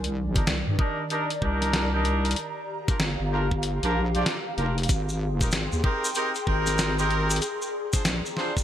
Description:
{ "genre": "glitch hop", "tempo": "95 BPM", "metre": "4/4", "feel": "swing 64% on 16ths", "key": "C minor", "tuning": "A4 = 441 Hz", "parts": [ { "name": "wobble bass", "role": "bass", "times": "0.0-8.2 s", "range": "F1 to G2", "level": "-26 LUFS", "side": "equal", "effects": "chorus" }, { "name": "boom bap sampler-style drum kit", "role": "drums", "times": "0.0-8.5 s", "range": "hi-hat, snare drum", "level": "-29 LUFS", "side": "left 1 dB", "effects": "gated reverb" }, { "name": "airy breathy pad", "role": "texture", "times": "0.0-8.6 s", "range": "Eb3 to C6", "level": "-32 LUFS", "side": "left 1 dB", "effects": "chorus, sidechain pumping" }, { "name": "bright horn section", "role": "stabs", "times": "0.4-8.5 s", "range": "C4 to D5", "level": "-29 LUFS", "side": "right 1 dB", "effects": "vintage 12-bit sampler grit, sidechain pumping, low-pass filter, digital delay" }, { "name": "electronic kick drum", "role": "drums", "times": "0.4-8.6 s", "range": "none", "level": "-25 LUFS", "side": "equal", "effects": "none" }, { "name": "maracas", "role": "percussion", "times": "4.9-8.6 s", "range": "none", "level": "-32 LUFS", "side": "left 2 dB", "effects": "none" } ], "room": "light reverb", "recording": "bright 1980s-style digital production", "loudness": "-23 LUFS", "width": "side -11 dB against mid", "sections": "0.0-8.6 A section", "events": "none", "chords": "0.0 Cm9; 2.4 Gm7; 4.9 Abmaj7; 7.4 Bb7" }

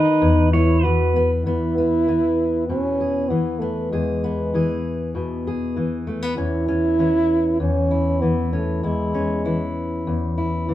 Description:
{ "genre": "acoustic folk duo or small band", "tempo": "98 BPM", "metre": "4/4", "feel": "straight", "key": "E major", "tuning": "A4 = 438 Hz", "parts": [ { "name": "mellow French horn", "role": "melody", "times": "0.0-9.8 s", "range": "G#3 to F#4", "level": "-21 LUFS", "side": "right 1 dB", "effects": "none" }, { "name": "pedal steel guitar", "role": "second line", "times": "0.0-1.3 s", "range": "B4 to C#5", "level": "-25 LUFS", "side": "right 5 dB", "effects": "none" }, { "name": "fingerpicked steel-string acoustic guitar", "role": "accompaniment", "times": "0.0-10.7 s", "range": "E2 to G#4", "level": "-21 LUFS", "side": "left 1 dB", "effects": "none" } ], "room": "moderate studio reverb, RT60 0.6 s", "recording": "band playing live in one room", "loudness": "-18 LUFS", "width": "side -13 dB against mid", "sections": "0.0-1.5 A section; 1.5-10.7 B section", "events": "none", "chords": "0.2 E5; 1.5 E; 6.4 C#m/E" }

